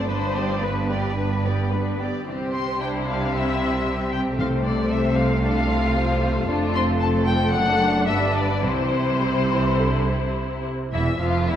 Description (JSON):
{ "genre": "quick classical-period movement for symphony orchestra", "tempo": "104-116 BPM", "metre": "4/4", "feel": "rubato", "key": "C major", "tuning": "A4 = 440 Hz", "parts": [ { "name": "muted chamber violin section", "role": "melody", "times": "0.0-11.6 s", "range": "B4 to C6", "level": "-27 LUFS", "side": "left 4 dB", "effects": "none" }, { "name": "muted chamber violin section", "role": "second line", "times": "0.0-11.6 s", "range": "D4 to D5", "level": "-28 LUFS", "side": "left 3 dB", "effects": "none" }, { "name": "muted studio viola section", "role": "accompaniment", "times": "0.0-11.6 s", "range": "C3 to D4", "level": "-25 LUFS", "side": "left 1 dB", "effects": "none" }, { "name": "muted chamber cello section", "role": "bass", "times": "0.0-11.6 s", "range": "E2 to C3", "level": "-27 LUFS", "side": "right 2 dB", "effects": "none" }, { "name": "muted chamber double bass section", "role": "bass", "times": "0.0-11.6 s", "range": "E1 to C2", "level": "-27 LUFS", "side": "right 3 dB", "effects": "none" }, { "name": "timpani", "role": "percussion", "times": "4.4-5.1 s", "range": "C3", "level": "-30 LUFS", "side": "left 1 dB", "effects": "none" } ], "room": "wet concert hall reverb, RT60 2.6 s", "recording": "none", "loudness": "-20 LUFS", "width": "side -10 dB against mid", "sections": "0.0-10.9 A section", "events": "none", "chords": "0.1 G; 2.3 C; 4.4 F/C; 6.5 F; 7.5 D/F#; 8.1 G; 8.6 C; 10.9 N.C.", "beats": "| 0.08 0.63 1.18 1.73 | 2.27 2.81 3.34 3.86 | 4.39 4.92 5.44 5.97 | 6.49 7.01 7.54 8.08 | 8.64 9.22 9.80 10.37 | 10.93 11.48" }